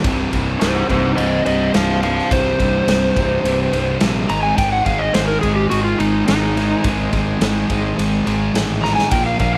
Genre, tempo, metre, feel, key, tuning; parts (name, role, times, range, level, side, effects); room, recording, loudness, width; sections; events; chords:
classic rock; 106 BPM; 4/4; straight; C minor; A4 = 439 Hz
bright tonewheel organ; sustained chords; 0.0-9.6 s; F3 to C5; -34 LUFS; equal
raw garage guitar; riff; 0.0-9.6 s; C2 to Bb3; -25 LUFS; equal; overdrive
sludgy distorted guitar; riff; 0.0-9.6 s; C2 to Bb3; -24 LUFS; equal; overdrive
fuzz fingered electric bass; bass; 0.0-9.6 s; C1 to Bb1; -25 LUFS; equal; overdrive
big rock drum kit; drums; 0.0-9.5 s; kick drum, ride cymbal, snare drum; -25 LUFS; equal
overdriven slide guitar; melody; 0.6-9.6 s; Eb4 to Bb5; -21 LUFS; equal; slapback echo
moderate spring reverb, RT60 2.0 s; -17 LUFS; mono
0.0-9.6 A section
electric slide guitar solo 0.0-9.6; drum fill 8.8
0.0 Cm; 4.3 Ab